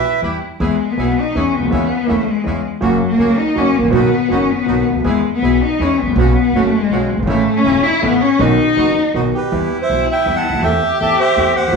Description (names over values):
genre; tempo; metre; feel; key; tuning
tango; 162 BPM; 3/4; rubato; E major; A4 = 439 Hz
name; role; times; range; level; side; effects
bandoneon; melody; 0.0-0.2, 9.3-11.8 s; G4 to A5; -16 LUFS; right 4 dB; none
warm cello; second line; 0.0-11.8 s; F#3 to G4; -16 LUFS; left 4 dB; slapback echo
warm concert grand piano; accompaniment; 0.0-11.8 s; E1 to A4; -20 LUFS; right 2 dB; none
bandoneon; stabs; 0.2-9.3 s; A3 to B4; -27 LUFS; right 2 dB; none
upright bass; bass; 0.2-11.8 s; E1 to E2; -21 LUFS; right 1 dB; none
room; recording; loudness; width
moderate club reverb, RT60 0.8 s; studio reverb; -13 LUFS; side -4 dB against mid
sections
0.6-9.5 A section; 9.5-11.8 B section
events
cello solo 0.6-9.5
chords
0.0 Em; 0.6 E; 1.7 C#m7/E; 2.8 F#; 3.9 B; 5.1 E; 6.2 Bsus2; 7.3 A; 8.4 B; 9.5 Em; 10.6 Am/E